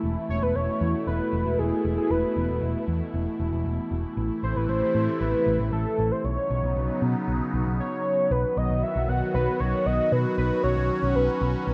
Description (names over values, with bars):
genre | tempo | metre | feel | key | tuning
synth-pop | 116 BPM | 4/4 | straight | unclear | A4 = 441 Hz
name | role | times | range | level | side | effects
phased analog pad | sustained chords | 0.0-11.7 s | B2 to F#4 | -30 LUFS | equal | phaser, chorus
picked electric bass | bass | 0.0-11.7 s | E1 to B2 | -29 LUFS | equal | none
warm velvety synth lead | melody | 0.3-11.7 s | G#4 to F#5 | -29 LUFS | equal | chorus, tape echo
room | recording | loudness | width
light reverb | rough home demo mix | -25 LUFS | mono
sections
0.0-8.3 A section; 8.3-11.7 B section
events
none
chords
0.0 E5; 4.2 Am; 6.2 Badd9